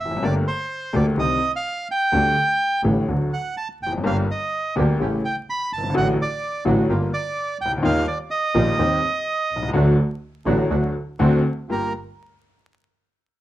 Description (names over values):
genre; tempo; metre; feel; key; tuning
tango; 126 BPM; 4/4; rubato; G minor; A4 = 439 Hz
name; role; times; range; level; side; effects
bandoneon; melody; 0.0-11.9 s; Bb4 to B5; -23 LUFS; right 2 dB; none
clear double bass; bass; 0.0-11.9 s; F1 to Eb2; -24 LUFS; right 1 dB; none
bright upright piano; accompaniment; 0.1-11.9 s; F#1 to G4; -22 LUFS; left 2 dB; none
bandoneon; stabs; 4.0-11.9 s; A3 to G4; -30 LUFS; right 4 dB; none
room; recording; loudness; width
moderate club reverb, RT60 0.5 s; worn, warbling old tape, cassette tape, vinyl crackle, warbly pitch drift; -19 LUFS; side -14 dB against mid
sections
0.0-11.7 A section; 11.7-13.4 B section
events
none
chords
0.2 Gmadd9; 1.2 Cm; 2.1 Dsus4; 3.1 D; 4.1 Gm; 5.0 A7; 6.0 D/A; 6.9 Gm7; 7.8 Ebadd9; 8.8 Cm/Eb; 9.7 D; 11.2 D7; 11.7 Gm7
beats
| 0.23 0.71 1.18 1.65 | 2.13 2.61 3.08 3.57 | 4.05 4.53 5.01 5.49 | 5.96 6.43 6.90 7.37 | 7.84 8.31 8.79 9.27 | 9.74 10.22 10.71 11.20 | 11.70